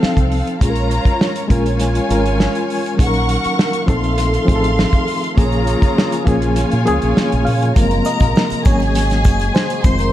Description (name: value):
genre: lush 1970s-style soul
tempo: 101 BPM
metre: 4/4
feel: straight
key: Bb minor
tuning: A4 = 440 Hz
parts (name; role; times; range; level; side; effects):
- warm symphonic string section; second line; 0.0-10.1 s; C4 to Db6; -21 LUFS; equal; slapback echo
- reed electric piano; accompaniment; 0.0-10.1 s; Eb3 to F5; -20 LUFS; left 1 dB; fast tremolo
- fingered electric bass; bass; 0.0-10.1 s; F1 to Bb2; -18 LUFS; equal; none
- warm soul drum kit; drums; 0.0-10.1 s; hi-hat, kick drum, snare drum; -17 LUFS; equal; none
- tonewheel organ; sustained chords; 3.0-10.1 s; C3 to Ab4; -26 LUFS; right 1 dB; slow rotary speaker
- triangle; percussion; 7.8-10.1 s; none; -38 LUFS; right 3 dB; none
room: light reverb, small room reverb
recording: dark, warm production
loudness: -13 LUFS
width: side -13 dB against mid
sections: 0.0-7.8 A section; 7.8-10.1 B section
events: reed electric piano solo 7.8-10.1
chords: 0.0 F7; 0.6 Bbm7; 1.5 Db6; 3.0 Gb6/Bb; 3.9 F7; 5.4 Bbm7; 7.8 Gbmaj9#11; 8.7 Ab7sus4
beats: 0.02 | 0.61 1.21 1.80 2.40 | 3.00 3.59 4.19 4.78 | 5.38 5.97 6.57 7.16 | 7.76 8.36 8.95 9.55